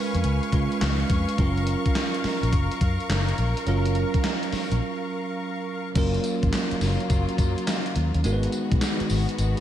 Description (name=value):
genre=R&B, new jack swing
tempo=105 BPM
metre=4/4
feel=swing 66% on 16ths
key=unclear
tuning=A4 = 440 Hz
part: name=bell-like tine electric piano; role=accompaniment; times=0.0-9.6 s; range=F#3 to B4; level=-28 LUFS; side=right 3 dB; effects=lush chorus, slapback echo
part: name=rich studio string section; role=sustained chords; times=0.0-9.6 s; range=C#3 to C#6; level=-31 LUFS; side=left 3 dB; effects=none
part: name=vintage muted fingered electric bass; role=bass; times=0.1-9.5 s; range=F#1 to C#3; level=-24 LUFS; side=left 1 dB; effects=none
part: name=gated 80s digital drum machine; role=drums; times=0.1-9.6 s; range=crash cymbal, handclaps, hi-hat, kick drum, snare drum, tambourine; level=-27 LUFS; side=left 1 dB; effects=gated reverb, gated reverb snare, vintage 12-bit sampler grit
room=moderate lush hall reverb, RT60 2.5 s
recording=big arena sound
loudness=-22 LUFS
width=side -11 dB against mid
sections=0.0-6.0 A section; 6.0-9.6 B section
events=break 4.8-6.0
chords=0.0 C#7; 1.4 F#maj7; 8.2 G#m7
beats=0.24 0.81 | 1.38 1.96 2.53 3.10 | 3.67 4.24 4.81 5.38 | 5.96 6.53 7.10 7.67 | 8.24 8.81 9.38